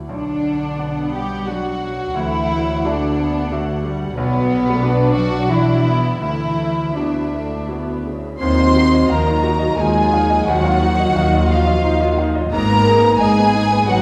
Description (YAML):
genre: cinematic, emotional film score for orchestra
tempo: 81-92 BPM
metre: 3/4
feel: rubato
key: unclear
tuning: A4 = 442 Hz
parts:
  - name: bright grand piano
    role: accompaniment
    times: 0.0-14.0 s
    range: B1 to F#5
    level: -27 LUFS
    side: equal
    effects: none
  - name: dark studio violin section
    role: melody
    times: 0.1-14.0 s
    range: D5 to C6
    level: -27 LUFS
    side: equal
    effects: none
  - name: rich studio violin section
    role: second line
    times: 0.1-14.0 s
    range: B3 to C5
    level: -24 LUFS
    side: equal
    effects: none
  - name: dark studio double bass section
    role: bass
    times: 0.1-14.0 s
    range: G#1 to D#2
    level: -24 LUFS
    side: equal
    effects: none
  - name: warm studio cello section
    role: bass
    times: 0.1-14.0 s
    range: G#2 to G3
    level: -27 LUFS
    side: equal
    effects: none
  - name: warm studio viola section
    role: accompaniment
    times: 0.8-14.0 s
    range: C#3 to E#4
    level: -28 LUFS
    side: equal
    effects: none
  - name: hollow small flute group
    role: second line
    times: 8.4-14.0 s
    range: E#5 to C6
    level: -25 LUFS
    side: equal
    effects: none
  - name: dark French horn section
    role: sustained chords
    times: 8.4-14.0 s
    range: E#3 to C4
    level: -22 LUFS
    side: equal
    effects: none
room: wet scoring stage reverb, RT60 1.4 s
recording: heard from further back in the room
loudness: -17 LUFS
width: mono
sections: 0.0-8.4 A section; 8.4-14.0 B section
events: none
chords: 0.1 Bm; 2.2 Dadd9; 4.2 Bm; 6.2 Dadd9; 8.4 D#madd9; 12.5 G#madd9